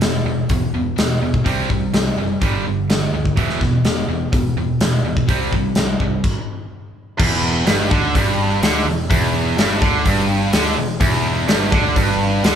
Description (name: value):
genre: hard rock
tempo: 125 BPM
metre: 4/4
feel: straight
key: E minor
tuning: A4 = 440 Hz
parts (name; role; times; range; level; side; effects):
- cranked stack guitar; riff; 0.0-12.6 s; E2 to C4; -22 LUFS; right 6 dB; overdrive
- tight distorted guitar; riff; 0.0-12.6 s; E2 to C4; -24 LUFS; left 5 dB; distortion
- picked electric bass; bass; 0.0-12.6 s; E1 to D2; -25 LUFS; equal; none
- big rock drum kit; drums; 0.0-12.6 s; crash cymbal, hi-hat, kick drum, snare drum; -19 LUFS; left 1 dB; none
- tight distorted guitar; riff; 7.2-12.6 s; E2 to D3; -22 LUFS; equal; distortion
room: light reverb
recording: band playing live in one room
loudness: -15 LUFS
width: side -8 dB against mid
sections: 0.0-7.2 A section; 7.2-12.6 B section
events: stop 6.2-7.2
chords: 0.0 E5; 1.4 C5; 2.4 G5; 3.4 E5; 5.3 C5; 6.2 N.C.; 7.2 Em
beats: 0.01 0.49 0.97 | 1.45 1.93 2.41 2.88 | 3.36 3.84 4.32 4.80 | 5.28 5.76 6.24 6.71 | 7.19 7.67 8.15 8.62 | 9.10 9.58 10.06 10.53 | 11.01 11.49 11.97 12.44